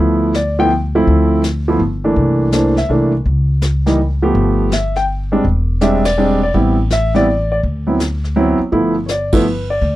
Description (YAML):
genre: jazz piano trio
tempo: 165 BPM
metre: 3/4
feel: swing 66% on 8ths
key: G mixolydian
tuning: A4 = 440 Hz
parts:
  - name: warm grand piano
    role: melody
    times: 0.0-10.0 s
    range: E3 to G5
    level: -14 LUFS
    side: right 1 dB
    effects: none
  - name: upright bass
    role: bass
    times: 0.0-10.0 s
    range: E1 to D2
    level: -17 LUFS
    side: equal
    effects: none
  - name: vintage brush drum kit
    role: drums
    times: 0.3-10.0 s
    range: brushed snare drum, hi-hat, kick drum, ride cymbal, snare drum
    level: -22 LUFS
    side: left 1 dB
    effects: none
room: light reverb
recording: dry, close 1970s-style studio recording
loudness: -13 LUFS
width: side -15 dB against mid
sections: 0.0-10.0 A section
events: band accent 6.0, 9.3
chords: 0.0 G13 (rootless); 1.8 Gsus2; 2.2 C13; 3.3 C#(b5, no3); 4.3 G9; 5.4 E7alt; 6.5 Am7; 7.6 D13; 8.7 G13